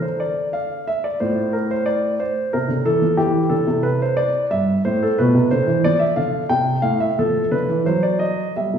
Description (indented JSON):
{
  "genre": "classical, baroque-style suite movement for grand piano",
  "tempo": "90 BPM",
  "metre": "3/4",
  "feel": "rubato",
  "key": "F major, C major from 3.2 s",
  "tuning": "A4 = 438 Hz",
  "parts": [
    { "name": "warm grand piano", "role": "solo", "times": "0.0-8.8 s", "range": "G2 to G5", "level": "-17 LUFS", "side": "equal", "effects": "none" }
  ],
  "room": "wet recital hall reverb, RT60 1.5 s",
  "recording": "heard from further back in the room, studio reverb",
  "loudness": "-17 LUFS",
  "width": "side -8 dB against mid",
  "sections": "0.0-8.8 A section",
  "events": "none",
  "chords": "0.0 N.C.; 1.2 F/A; 3.2 C; 5.2 Bdim; 6.5 C5; 7.2 F; 7.9 N.C."
}